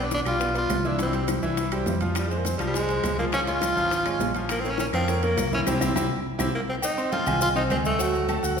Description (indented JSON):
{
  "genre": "latin, salsa",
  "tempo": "205 BPM",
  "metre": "4/4",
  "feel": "straight",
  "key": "unclear",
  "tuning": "A4 = 440 Hz",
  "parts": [
    { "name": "raspy tenor saxophone", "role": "melody", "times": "0.0-8.4 s", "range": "G3 to F4", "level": "-26 LUFS", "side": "equal", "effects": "none" },
    { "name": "bright grand piano", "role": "accompaniment", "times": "0.0-8.6 s", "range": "E3 to F#6", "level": "-28 LUFS", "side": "right 1 dB", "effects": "none" },
    { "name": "fingered electric bass", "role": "bass", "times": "0.0-8.6 s", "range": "Ab1 to F2", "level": "-30 LUFS", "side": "left 1 dB", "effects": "none" },
    { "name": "bongos and cowbell", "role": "percussion", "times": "0.1-8.6 s", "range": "none", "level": "-35 LUFS", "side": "left 4 dB", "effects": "none" },
    { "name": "congas", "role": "percussion", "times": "0.1-8.6 s", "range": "none", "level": "-34 LUFS", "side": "right 1 dB", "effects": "none" },
    { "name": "maracas", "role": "percussion", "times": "0.1-8.6 s", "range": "none", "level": "-37 LUFS", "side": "left 5 dB", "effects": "none" },
    { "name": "timbales and agogo bells", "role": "percussion", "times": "0.1-8.6 s", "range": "none", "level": "-35 LUFS", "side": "right 4 dB", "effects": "none" },
    { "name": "claves", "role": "percussion", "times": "0.3-8.4 s", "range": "none", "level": "-41 LUFS", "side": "left 6 dB", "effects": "none" }
  ],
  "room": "wet recital hall reverb, RT60 1.6 s",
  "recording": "recorded in a church or concert hall",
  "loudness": "-22 LUFS",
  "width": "side -6 dB against mid",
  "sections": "0.0-6.8 A section; 6.8-8.6 B section",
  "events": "drum fill 5.7-6.8; band accent 5.7-6.8",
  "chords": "0.0 G7/B; 1.0 C; 2.2 Fm; 3.3 Db; 4.5 Bbm; 5.7 C; 6.8 Fm7; 8.0 D"
}